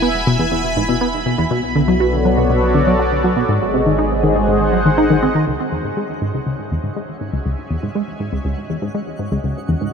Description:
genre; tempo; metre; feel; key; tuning
ambient, sequencer-driven space music; 121 BPM; 4/4; straight; C# minor from 5.5 s; A4 = 440 Hz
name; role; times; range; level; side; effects
sweeping resonant pad; sustained chords; 0.0-9.9 s; G#3 to B5; -19 LUFS; equal; chorus
tight sequenced synth; riff; 0.0-9.9 s; C#2 to F#4; -18 LUFS; equal; chorus, tape echo
warm sub bass; bass; 0.0-5.4 s; E1 to B1; -24 LUFS; equal; none
twinkling granular texture; texture; 6.1-9.9 s; F#4 to F#5; -41 LUFS; right 1 dB; built-in reverb
room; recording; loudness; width
wet huge ambient reverb, RT60 7.8 s; none; -15 LUFS; side -6 dB against mid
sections
0.0-5.5 A section; 5.5-9.9 B section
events
fade-in on analog synth pad 5.5-9.9; fade-in on synth texture 5.5-9.9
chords
0.0 Eadd9; 1.5 Bm7; 3.5 G#7; 5.5 C#madd9

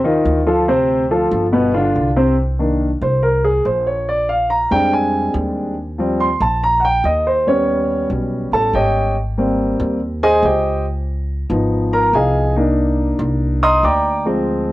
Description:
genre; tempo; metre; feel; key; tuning
Afro-Cuban jazz; 141 BPM; 4/4; straight; C minor; A4 = 441 Hz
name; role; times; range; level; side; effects
warm concert grand piano; accompaniment; 0.0-14.7 s; B2 to Eb6; -15 LUFS; equal; cassette tape
upright bass; bass; 0.0-14.7 s; G1 to F2; -21 LUFS; equal; none
room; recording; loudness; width
light reverb, small room ambience; home recording on cassette; -14 LUFS; side -16 dB against mid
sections
0.0-2.4 A section; 2.4-14.7 B section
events
grand piano solo 2.4-14.7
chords
0.0 Ab5 (rootless); 0.7 Dm7; 1.5 G7; 2.4 Cm9; 4.1 Bb13; 5.8 Eb69; 7.5 Ebaug7; 9.2 Abmaj9; 10.9 Db9; 12.6 Cm9

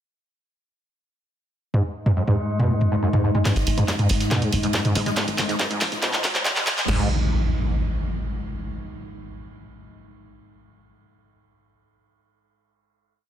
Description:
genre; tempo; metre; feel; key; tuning
driving peak-time techno; 140 BPM; 4/4; straight; G# minor; A4 = 440 Hz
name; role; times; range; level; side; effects
overdriven acid bass; riff; 1.7-7.1 s; F#2 to G#3; -25 LUFS; equal; distortion, ensemble chorus, sidechain pumping, dub echo
metallic inharmonic drone; drone; 2.0-6.9 s; G#2; -28 LUFS; left 2 dB; chorus, built-in reverb, sidechain pumping
punchy analog drum machine; drums; 1.7-6.9 s; handclaps, hi-hat, toms; -23 LUFS; equal; none
punchy analog drum machine; drums; 3.5-7.0 s; crash cymbal, kick drum, snare drum; -30 LUFS; equal; high-pass filter on kick, high-pass filter on snare, high-pass filter on cymbals
tight funk drum kit; drums; 3.5-6.8 s; ride cymbal, snare drum; -36 LUFS; right 3 dB; sidechain pumping on cymbals, high-pass filter on cymbals, high-pass filter on snare, high-pass filter on room
riser and impact; sound effects; 5.2-8.6 s; none; -27 LUFS; equal; none
tight sequencer bass; bass; 3.6-7.1 s; G#1 to A#1; -26 LUFS; equal; sidechain pumping
room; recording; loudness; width
moderate stone room reverb, RT60 1.1 s, digital ambience; dense, heavily limited modern master, high-pass filter; -20 LUFS; side -10 dB against mid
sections
1.7-3.5 intro; 3.5-6.9 build; 6.9-8.6 final note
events
filter sweep on acid bass 1.7-3.5, 3.5-6.9; build-up 3.5-6.9; drum fill 3.5-6.9; filter sweep 3.5-6.9; riser 5.2-6.9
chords
none

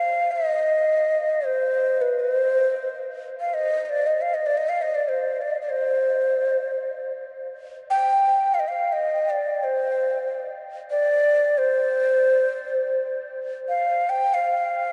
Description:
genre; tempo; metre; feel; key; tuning
persian; free time; none; none; C avaz esfahan; A4 = 441 Hz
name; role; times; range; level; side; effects
breathy mellow ney; solo; 0.0-14.9 s; B4 to G5; -23 LUFS; equal; none
room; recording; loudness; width
wet huge ambient reverb, RT60 7.9 s; in a vast, echoing space, nothing above 10.7 kHz; -23 LUFS; mono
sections
0.0-13.2 A section; 13.2-14.9 A section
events
none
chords
none

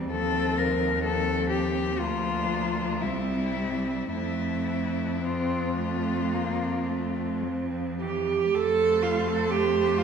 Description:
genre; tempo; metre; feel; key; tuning
classical, lyrical piece for cello ensemble; 52-66 BPM; 4/4; rubato; F major; A4 = 441 Hz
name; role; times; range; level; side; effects
clear cello; second line; 0.0-10.0 s; Bb3 to A4; -28 LUFS; right 5 dB; none
rich cello; accompaniment; 0.0-10.0 s; E3 to C4; -32 LUFS; left 1 dB; none
clear cello; bass; 0.0-10.0 s; C2 to F2; -32 LUFS; equal; none
rich cello; melody; 0.1-10.0 s; E4 to C5; -30 LUFS; left 5 dB; none
room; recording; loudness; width
wet scoring stage reverb, RT60 2.1 s; recorded in a church or concert hall; -24 LUFS; side -6 dB against mid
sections
0.0-8.6 A section; 8.6-10.0 A section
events
none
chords
0.1 F5/Eb; 2.0 Bb/D; 3.0 C; 4.1 F

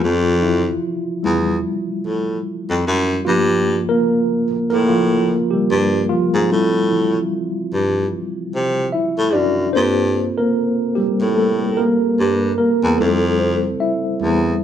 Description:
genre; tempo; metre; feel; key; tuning
R&B, neo-soul; 74 BPM; 4/4; swing 57% on 16ths; G dorian; A4 = 441 Hz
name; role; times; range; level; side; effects
mellow tine electric piano; accompaniment; 0.0-14.6 s; E3 to E5; -18 LUFS; equal; medium stereo tremolo
clear baritone saxophone; bass; 0.0-14.6 s; E2 to C3; -18 LUFS; equal; none
room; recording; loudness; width
moderate large studio reverb, RT60 1.0 s; band playing live in one room; -16 LUFS; side -9 dB against mid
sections
0.0-14.6 A section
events
tine electric piano solo 0.0-14.6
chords
0.0 Fmaj7; 3.3 Gm9; 6.5 Am7; 9.7 Gm9; 13.0 Fmaj7

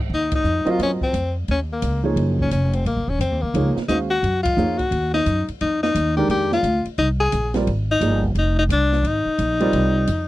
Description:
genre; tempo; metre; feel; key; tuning
modal jazz; 174 BPM; 4/4; swing 63% on 8ths; Eb dorian; A4 = 440 Hz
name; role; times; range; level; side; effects
upright bass; bass; 0.0-10.3 s; Eb1 to Gb2; -22 LUFS; equal; none
breathy tenor saxophone; melody; 0.1-10.3 s; Bb3 to Ab4; -21 LUFS; left 2 dB; none
open jazz drum kit; drums; 0.3-10.2 s; hi-hat, kick drum, ride cymbal, snare drum; -31 LUFS; right 1 dB; none
warm baby grand piano; accompaniment; 0.7-10.1 s; Eb3 to F5; -23 LUFS; right 2 dB; none
room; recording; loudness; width
little or no reverb; dry, close 1970s-style studio recording; -18 LUFS; side -16 dB against mid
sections
0.1-10.3 A section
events
band accent 0.3, 4.4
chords
0.1 Ebm9; 5.6 Fm9

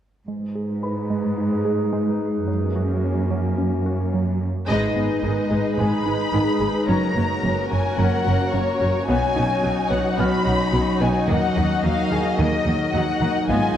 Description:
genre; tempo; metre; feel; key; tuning
cinematic; 109 BPM; 4/4; straight; unclear; A4 = 441 Hz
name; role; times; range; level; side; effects
warbly tape-like pad; sustained chords; 0.3-13.8 s; F#3 to D#5; -25 LUFS; left 1 dB; chorus, built-in reverb, low-pass filter
glassy wavetable pluck; arpeggios; 0.3-13.7 s; Eb3 to B4; -29 LUFS; right 1 dB; chorus, low-pass filter, tape echo
warm symphonic cello section; bass; 0.3-13.6 s; Gb2 to Eb3; -26 LUFS; right 1 dB; none
warm concert grand piano; texture; 0.8-13.8 s; F4 to F6; -33 LUFS; left 1 dB; tape echo
warm symphonic violin section; melody; 4.7-13.8 s; Db5 to Cb6; -26 LUFS; left 4 dB; low-pass filter
warm symphonic violin section; second line; 4.7-13.8 s; F#4 to Eb5; -28 LUFS; left 2 dB; none
rich symphonic viola section; accompaniment; 4.7-13.8 s; Eb3 to Gb4; -29 LUFS; equal; low-pass filter
warm symphonic double bass section; bass; 4.7-13.6 s; Gb1 to Eb2; -26 LUFS; right 2 dB; none
room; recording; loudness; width
wet scoring stage reverb, RT60 1.8 s; dark, warm production, faint mains hum; -19 LUFS; side -10 dB against mid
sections
0.3-4.7 A section; 4.7-13.8 B section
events
filter sweep 0.3-4.7; band accent 4.7-5.2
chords
0.3 Abm; 2.5 Gb; 4.7 Abm; 6.9 Gb; 9.1 Badd9; 11.3 Ebm

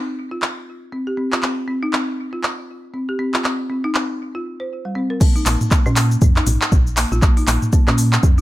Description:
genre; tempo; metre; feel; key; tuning
afro house; 119 BPM; 4/4; swing 59% on 16ths; Bb dorian; A4 = 439 Hz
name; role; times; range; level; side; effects
folk marimba with medium hard mallets; arpeggios; 0.0-8.4 s; G3 to C5; -23 LUFS; equal; sidechain pumping, digital delay
afro-pop drum kit; drums; 0.4-8.4 s; crash cymbal, handclaps, hi-hat, shaker, toms; -20 LUFS; equal; none
electronic kick drum; drums; 5.2-8.4 s; none; -14 LUFS; equal; none
woody FM bass; bass; 5.5-8.4 s; Bb1 to Bb2; -18 LUFS; equal; sidechain pumping
room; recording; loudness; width
digital ambience; none; -16 LUFS; side -16 dB against mid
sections
0.0-5.2 A section; 5.2-8.4 B section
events
break 4.2-5.2; drop 5.2-8.4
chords
0.0 N.C.; 5.2 Bb5

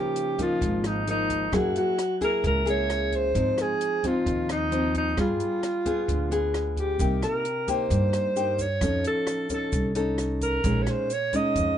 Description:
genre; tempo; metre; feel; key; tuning
bossa nova; 132 BPM; 4/4; straight; F minor; A4 = 440 Hz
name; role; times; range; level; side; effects
breathy alto saxophone; melody; 0.0-11.8 s; Eb4 to Eb5; -26 LUFS; right 1 dB; plate reverb
nylon-string guitar; accompaniment; 0.0-11.8 s; G2 to A4; -28 LUFS; left 2 dB; none
compact cocktail drum kit; drums; 0.2-11.7 s; hi-hat, kick drum, rim click; -33 LUFS; equal; none
upright bass; bass; 0.6-11.8 s; Ab1 to Ab2; -28 LUFS; equal; none
tube shaker; percussion; 7.0-11.8 s; none; -43 LUFS; right 8 dB; none
room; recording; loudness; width
light reverb; nothing above 10.4 kHz; -23 LUFS; side -10 dB against mid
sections
0.0-11.8 A section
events
none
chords
0.0 Db69; 1.5 Gb9; 3.3 Ab6; 5.2 G7b9; 7.0 Cm7; 8.8 F7b13; 10.6 Bbm7

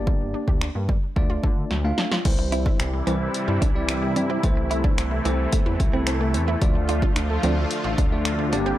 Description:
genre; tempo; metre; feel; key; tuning
dance-pop; 110 BPM; 4/4; straight; D minor; A4 = 440 Hz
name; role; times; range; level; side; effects
bell-like tine electric piano; accompaniment; 0.0-8.8 s; G3 to A5; -28 LUFS; left 1 dB; fast stereo tremolo, sidechain pumping
wide unison pluck; arpeggios; 0.0-8.8 s; E3 to G4; -32 LUFS; right 2 dB; sidechain pumping, analog delay
chorused synth bass; bass; 0.0-8.7 s; G1 to D3; -26 LUFS; equal; sidechain pumping
punchy analog drum machine; drums; 0.1-8.7 s; crash cymbal, finger snaps, hi-hat, kick drum, snare drum; -23 LUFS; equal; none
filtered supersaw swell; sustained chords; 2.3-8.8 s; C3 to G4; -28 LUFS; equal; sidechain pumping
direct-recorded clean electric guitar; riff; 2.4-8.7 s; A3 to F4; -30 LUFS; right 4 dB; wide subtle chorus
room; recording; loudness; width
little or no reverb; dry, gritty hardware recording; -20 LUFS; side -14 dB against mid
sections
0.0-2.3 A section; 2.3-8.8 B section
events
drum fill 1.7-2.3; tine electric piano fill 5.5-6.6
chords
0.0 Gm; 1.2 Dm; 2.3 C; 4.4 Am/C; 6.6 Dm

